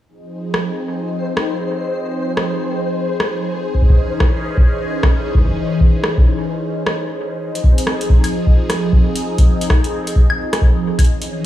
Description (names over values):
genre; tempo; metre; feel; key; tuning
IDM; 131 BPM; 4/4; swing 62% on 16ths; F minor; A4 = 440 Hz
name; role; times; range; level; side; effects
phased analog pad; sustained chords; 0.1-11.5 s; Fb3 to Ab4; -21 LUFS; equal; phaser, chorus
flickering grainy texture; texture; 0.7-7.4 s; C5; -28 LUFS; left 1 dB; built-in reverb, sidechain pumping
electro analog drum machine; drums; 0.5-11.3 s; hi-hat, rim click, woodblock; -23 LUFS; equal; analog delay
electronic kick drum; drums; 3.7-11.1 s; none; -12 LUFS; equal; none
room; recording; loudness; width
light reverb; studio reverb; -14 LUFS; side -13 dB against mid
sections
0.1-7.4 A section; 7.4-11.5 B section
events
break 6.5-7.4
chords
0.1 Fm7; 3.7 Dbmadd9; 7.4 Fm7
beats
| 0.08 0.54 1.00 1.46 | 1.91 2.37 2.83 3.29 | 3.75 4.20 4.66 5.12 | 5.58 6.04 6.49 6.95 | 7.41 7.87 8.33 8.78 | 9.24 9.70 10.16 10.62 | 11.07